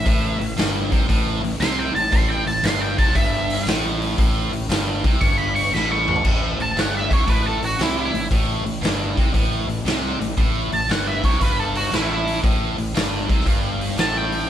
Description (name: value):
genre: blues rock power trio and southern rock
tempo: 116 BPM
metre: 4/4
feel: swing 67% on 8ths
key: unclear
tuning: A4 = 441 Hz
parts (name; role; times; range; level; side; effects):
- octave-fuzz lead guitar; melody; 0.0-14.5 s; E4 to C#6; -23 LUFS; right 1 dB; wah, distortion
- distorted electric guitar; riff; 0.0-14.5 s; G2 to C3; -24 LUFS; equal; overdrive
- fuzz fingered electric bass; bass; 0.0-14.5 s; G1 to C2; -27 LUFS; equal; overdrive
- raw garage drum kit; drums; 0.1-14.4 s; crash cymbal, hi-hat, kick drum, snare drum, toms; -21 LUFS; equal; none
room: moderate stone room reverb, RT60 1.4 s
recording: band playing live in one room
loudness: -18 LUFS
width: side -10 dB against mid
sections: 0.0-6.2 A section; 6.2-14.5 B section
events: lead electric guitar solo 0.0-6.2; drum fill 5.7-6.2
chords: 0.0 A5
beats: | 0.06 0.58 1.09 1.61 | 2.12 2.64 3.15 3.67 | 4.18 4.70 5.21 5.73 | 6.25 6.76 7.28 7.79 | 8.31 8.83 9.34 9.86 | 10.37 10.89 11.40 11.92 | 12.44 12.95 13.46 13.98 | 14.49